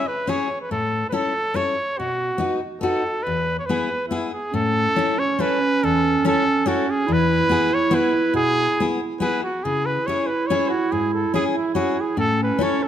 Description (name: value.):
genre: alpine folk, alpine dance band.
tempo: 141 BPM.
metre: 3/4.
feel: straight.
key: E major, A major from 4.5 s.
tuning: A4 = 441 Hz.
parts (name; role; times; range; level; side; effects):
warm trumpet; melody; 0.0-12.9 s; E4 to C#5; -22 LUFS; equal; none.
fingerpicked steel-string acoustic guitar; accompaniment; 0.0-12.8 s; E2 to A4; -24 LUFS; left 4 dB; none.
mellow clarinet; second line; 4.5-12.9 s; C#4 to E4; -23 LUFS; right 6 dB; none.
room: moderate recital hall reverb, RT60 1.4 s.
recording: close, detailed microphones.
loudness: -19 LUFS.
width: side -10 dB against mid.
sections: 0.0-4.5 A section; 4.5-12.9 B section.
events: none.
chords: 0.0 C#m; 0.7 A; 2.0 B; 3.2 E; 4.5 A; 7.1 E; 9.6 C#m; 12.2 A.